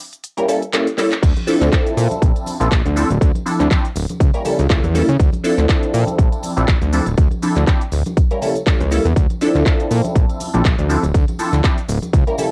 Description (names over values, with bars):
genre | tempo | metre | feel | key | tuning
filtered disco house | 121 BPM | 4/4 | swing 55% on 16ths | D minor | A4 = 440 Hz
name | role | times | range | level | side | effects
house drum kit | drums | 0.1-12.5 s | cabasa, crash cymbal, handclaps, hi-hat | -29 LUFS | equal | sidechain pumping on hats, cassette tape, sidechain pumping on perc, sidechain pumping on cymbals
funky polysynth comp | accompaniment | 0.4-12.5 s | F3 to Bb4 | -21 LUFS | equal | chorus, phaser, sidechain pumping, cassette tape
fat analog bass | bass | 1.2-12.2 s | D1 to C#3 | -20 LUFS | equal | tube saturation, sidechain pumping
electronic kick drum | drums | 1.2-12.2 s | none | -18 LUFS | equal | cassette tape
tambourine and congas | percussion | 1.2-12.5 s | none | -33 LUFS | equal | none
room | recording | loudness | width
light reverb | home recording on cassette | -17 LUFS | mono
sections
0.0-12.5 A section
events
break 0.0-1.2; drum fill 1.0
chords
0.2 A7b9; 1.2 Dm9; 2.0 Bbmaj9#11; 3.0 Dm9; 4.2 A7b9/C#; 5.2 Dm9; 5.9 Bbmaj9#11; 6.9 Dm9; 8.2 A7b9; 9.2 Dm9; 9.9 Bbmaj9#11; 10.9 Dm9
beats
0.24 0.73 | 1.23 1.72 2.22 2.72 | 3.21 3.71 4.20 4.70 | 5.20 5.69 6.19 6.68 | 7.18 7.67 8.17 8.67 | 9.16 9.66 10.15 10.65 | 11.14 11.64 12.14